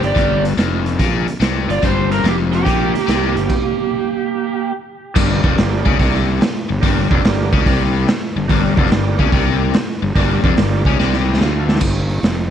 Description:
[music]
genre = blues rock power trio and southern rock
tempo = 144 BPM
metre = 4/4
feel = swing 67% on 8ths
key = G minor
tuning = A4 = 439 Hz
[part]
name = overdriven slide guitar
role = melody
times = 0.0-4.7 s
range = G4 to D5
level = -21 LUFS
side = right 3 dB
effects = none
[part]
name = bluesy overdriven lead guitar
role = second line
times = 0.0-4.7 s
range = Bb3 to G4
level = -24 LUFS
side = right 16 dB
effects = distortion
[part]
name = biting overdriven guitar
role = riff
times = 0.0-11.8 s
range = F2 to D3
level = -20 LUFS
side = left 11 dB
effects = none
[part]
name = fuzz fingered electric bass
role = bass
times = 0.0-12.5 s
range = F1 to D2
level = -18 LUFS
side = equal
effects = overdrive
[part]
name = raw garage drum kit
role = drums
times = 0.0-12.4 s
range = crash cymbal, hi-hat, kick drum, snare drum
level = -18 LUFS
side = right 1 dB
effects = none
[part]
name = overdriven tonewheel organ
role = sustained chords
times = 5.1-11.8 s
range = D4 to Bb5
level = -25 LUFS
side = right 9 dB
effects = slow rotary speaker, chorus vibrato
[sound]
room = small room ambience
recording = 1960s-style stereo with parts hard left and right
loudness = -14 LUFS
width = side -9 dB against mid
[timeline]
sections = 0.0-5.2 A section; 5.2-11.8 B section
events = stop 3.5-5.2; drum fill 11.0-11.8; tonewheel organ fill 11.0-11.8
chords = 0.0 Gm; 11.8 N.C.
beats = | 0.16 0.58 1.00 1.41 | 1.83 2.25 2.66 3.08 | 3.50 3.92 4.33 4.75 | 5.17 5.58 6.00 6.41 | 6.83 7.25 7.66 8.08 | 8.49 8.91 9.32 9.74 | 10.16 10.57 10.99 11.41 | 11.82 12.24

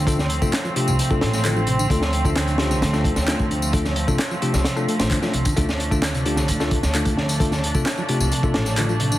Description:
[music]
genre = breakbeat, breaks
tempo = 131 BPM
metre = 4/4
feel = straight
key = D minor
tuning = A4 = 440 Hz
[part]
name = warm studio string section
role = sustained chords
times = 0.0-9.2 s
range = F3 to D4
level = -27 LUFS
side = right 1 dB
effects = vintage 12-bit sampler grit, sidechain pumping
[part]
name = percussive tonewheel organ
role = riff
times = 0.0-9.2 s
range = C3 to A3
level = -26 LUFS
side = right 1 dB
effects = chorus vibrato, slow rotary speaker, overdrive
[part]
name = upright bass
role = bass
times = 0.0-9.2 s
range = A1 to D2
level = -24 LUFS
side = equal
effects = none
[part]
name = bell-like tine electric piano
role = stabs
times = 0.1-9.0 s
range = A3 to C5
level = -27 LUFS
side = left 3 dB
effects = dub echo
[part]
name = crunchy breakbeat drum kit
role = drums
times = 0.1-9.1 s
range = hi-hat, kick drum, snare drum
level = -23 LUFS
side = equal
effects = none
[part]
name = electronic tambourine and handclaps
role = drums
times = 0.1-9.2 s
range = none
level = -29 LUFS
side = left 1 dB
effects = overdrive
[sound]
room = light reverb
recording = heavily compressed radio sound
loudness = -18 LUFS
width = side -15 dB against mid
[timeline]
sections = 0.0-9.2 A section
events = none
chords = 0.0 Dm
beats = | 0.07 0.53 0.99 1.45 | 1.91 2.36 2.82 3.28 | 3.74 4.20 4.65 5.11 | 5.57 6.03 6.49 6.94 | 7.40 7.86 8.32 8.78

